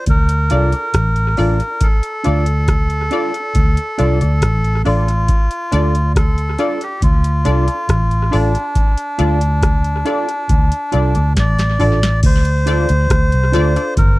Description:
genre	roots reggae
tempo	69 BPM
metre	4/4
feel	straight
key	D minor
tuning	A4 = 435 Hz
part	melodica	melody	0.0-14.2 s	D4 to D5	-21 LUFS	equal	tape echo
part	vintage muted fingered electric bass	bass	0.1-14.2 s	G1 to D2	-15 LUFS	equal	none
part	booming analog drum machine	drums	0.1-14.2 s	crash cymbal, hi-hat, kick drum, rim click, snare drum, toms	-16 LUFS	equal	none
part	mellow electric guitar	accompaniment	0.5-13.7 s	D4 to D5	-23 LUFS	right 3 dB	tape echo
part	filtered dub chord stab	stabs	0.5-13.9 s	D4 to D5	-22 LUFS	left 5 dB	chorus
room	little or no reverb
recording	dry, close 1970s-style studio recording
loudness	-13 LUFS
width	side -19 dB against mid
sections	0.0-12.2 A section; 12.2-14.2 B section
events	drum fill 11.4-12.2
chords	0.0 Dm

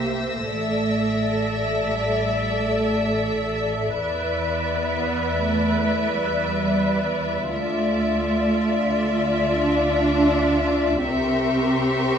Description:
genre	cinematic, suspense film score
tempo	free time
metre	none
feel	none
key	D minor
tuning	A4 = 438 Hz
part	warm symphonic violin section	melody	0.0-12.2 s	E5	-27 LUFS	left 4 dB	none
part	dark symphonic violin section	second line	0.0-12.2 s	Bb4 to D5	-27 LUFS	left 4 dB	none
part	rich symphonic viola section	accompaniment	0.0-12.2 s	F4 to B4	-27 LUFS	right 1 dB	none
part	warm symphonic cello section	bass	0.0-12.2 s	G3 to D4	-24 LUFS	right 2 dB	none
part	warm symphonic double bass section	bass	0.0-12.2 s	A1 to E2	-29 LUFS	right 2 dB	none
part	warm symphonic violin section	texture	0.0-3.6, 11.0-12.2 s	C6 to Bb6	-32 LUFS	left 4 dB	none
room	wet recital hall reverb, RT60 1.4 s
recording	recorded in a church or concert hall, nothing above 10.6 kHz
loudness	-20 LUFS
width	side -8 dB against mid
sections	0.0-12.2 A section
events	none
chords	0.5 Asus4; 4.0 Em7; 7.5 Dmadd9; 11.0 C7

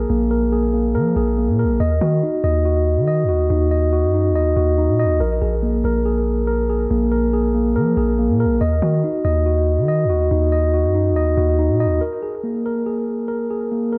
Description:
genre	hip hop, drill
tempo	141 BPM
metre	4/4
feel	half-time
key	unclear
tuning	A4 = 441 Hz
part	mellow tine electric piano	arpeggios	0.0-14.0 s	Bb3 to Eb5	-21 LUFS	equal	tape echo
part	long sustained 808-style bass	bass	0.0-12.0 s	Bb1 to F3	-21 LUFS	equal	none
room	moderate concert hall reverb, RT60 2.2 s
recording	none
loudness	-19 LUFS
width	mono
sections	0.0-12.0 A section; 12.0-14.0 B section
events	none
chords	0.0 Bb5; 1.8 Ebm; 5.2 Bb5; 8.6 Ebm; 12.0 Absus2/Bb

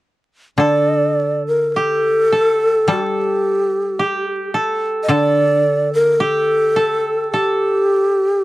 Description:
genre	japanese traditional, Japanese chamber music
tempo	54 BPM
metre	2/4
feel	rubato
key	unclear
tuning	A4 = 440 Hz
part	breathy long shakuhachi	melody	0.6-8.4 s	G4 to Eb5	-16 LUFS	equal	none
part	koto	second line	0.6-8.4 s	G4 to A4	-21 LUFS	right 1 dB	none
part	koto	accompaniment	0.6-8.4 s	D3 to G3	-22 LUFS	left 1 dB	none
room	light reverb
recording	dark, warm production, vinyl crackle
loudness	-14 LUFS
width	side -17 dB against mid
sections	0.6-8.4 A section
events	none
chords	none

